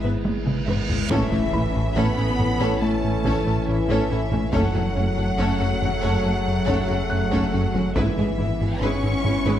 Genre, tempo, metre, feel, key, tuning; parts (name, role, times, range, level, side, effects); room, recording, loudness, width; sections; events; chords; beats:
cinematic, hybrid orchestral and electronic film score; 70 BPM; 4/4; straight; A4 = 441 Hz
rich symphonic violin section; melody; 0.0-9.6 s; G#4 to C#6; -31 LUFS; left 3 dB
warm symphonic viola section; accompaniment; 0.0-9.6 s; G#3 to B4; -29 LUFS; right 2 dB
warbly tape-like pad; sustained chords; 0.0-9.6 s; E3 to E5; -30 LUFS; left 3 dB; chorus, built-in reverb, phaser
rubbery square bass; riff; 0.0-9.6 s; F#2 to A3; -26 LUFS; left 1 dB
punchy sub bass; bass; 0.0-9.6 s; F#1 to A1; -31 LUFS; equal
rich symphonic cello section; bass; 0.0-9.6 s; G#2 to C#4; -31 LUFS; right 3 dB
reverse cymbal and impact; sound effects; 0.1-4.5 s; -33 LUFS; right 3 dB
felt-muted upright piano; texture; 0.0-9.6 s; B5 to F#6; -37 LUFS; equal
clear symphonic double bass section; bass; 0.2-9.5 s; F#1 to A1; -30 LUFS; right 3 dB
solo taiko drums; drums; 0.2-9.6 s; -29 LUFS; equal
warm symphonic violin section; second line; 1.1-9.6 s; C#4 to C#5; -32 LUFS; left 3 dB
dark French horn section; sustained chords; 1.1-9.6 s; E3 to C#4; -31 LUFS; left 4 dB
warm trombone section; sustained chords; 1.1-9.6 s; C#3 to C#4; -33 LUFS; right 3 dB
wet scoring stage reverb, RT60 1.9 s; dark, warm production; -20 LUFS; side -10 dB against mid
0.0-1.1 A section; 1.1-9.6 B section
build-up 0.0-1.1; reverse cymbal 0.1-1.1; drum fill 0.2-1.1; impact 1.1-4.5
0.0 E/G#; 1.1 A; 4.5 F#m; 8.0 E/G#
0.25 | 1.10 1.96 2.82 3.67 | 4.53 5.39 6.25 7.10 | 7.96 8.82